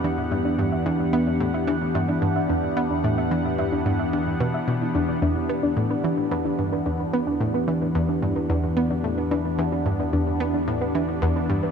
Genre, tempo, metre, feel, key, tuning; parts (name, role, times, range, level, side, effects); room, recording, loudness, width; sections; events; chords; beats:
ambient, sequencer-driven space music; 110 BPM; 4/4; straight; E minor; A4 = 438 Hz
phased analog pad; sustained chords; 0.0-11.7 s; E3 to F#5; -25 LUFS; equal; phaser, chorus, shimmer reverb
soft round pluck; arpeggios; 0.0-11.7 s; D4 to E5; -28 LUFS; moving between left 4 dB and right 6 dB; chorus, auto-pan, analog delay, shimmer reverb
analog pluck; riff; 0.0-11.7 s; E2 to B3; -26 LUFS; equal; chorus, analog delay, shimmer reverb
analog drone; bass; 0.0-11.7 s; E2; -33 LUFS; equal; chorus
wet huge ambient reverb, RT60 7.9 s; cassette tape; -21 LUFS; side -6 dB against mid
0.0-11.7 A section
0.0 Em7
0.31 | 0.86 1.40 1.95 2.50 | 3.04 3.59 4.13 4.68 | 5.22 5.77 6.31 6.86 | 7.40 7.95 8.49 9.04 | 9.59 10.13 10.68 11.22